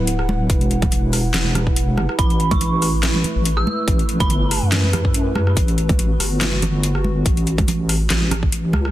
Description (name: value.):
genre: deep dubstep.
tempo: 142 BPM.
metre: 4/4.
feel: swing 54% on 16ths, half-time.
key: unclear.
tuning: A4 = 440 Hz.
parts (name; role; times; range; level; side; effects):
dark analog pad; sustained chords; 0.0-8.9 s; A3 to F#5; -27 LUFS; right 1 dB; chorus.
deep soft wobble bass; bass; 0.0-8.9 s; D1 to F#2; -19 LUFS; equal; chorus, tube saturation.
dubstep drum kit; drums; 0.1-8.9 s; handclaps, hi-hat, rim click, snare drum; -23 LUFS; equal; overdrive.
congas; percussion; 0.3-8.8 s; none; -27 LUFS; right 2 dB; none.
electronic kick drum; drums; 0.5-8.5 s; none; -19 LUFS; equal; overdrive.
dark detuned synth bell; melody; 2.2-4.6 s; B5 to E6; -26 LUFS; right 3 dB; chorus, phaser, dub echo.
room: digital ambience.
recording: dense, heavily limited modern master.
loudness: -16 LUFS.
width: side -14 dB against mid.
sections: 0.0-8.9 A section.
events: none.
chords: 0.0 E5; 2.2 A5.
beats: 0.07 | 0.50 0.92 1.34 1.76 | 2.19 2.61 3.03 3.45 | 3.88 4.30 4.72 5.14 | 5.57 5.99 6.41 6.83 | 7.26 7.68 8.10 8.53.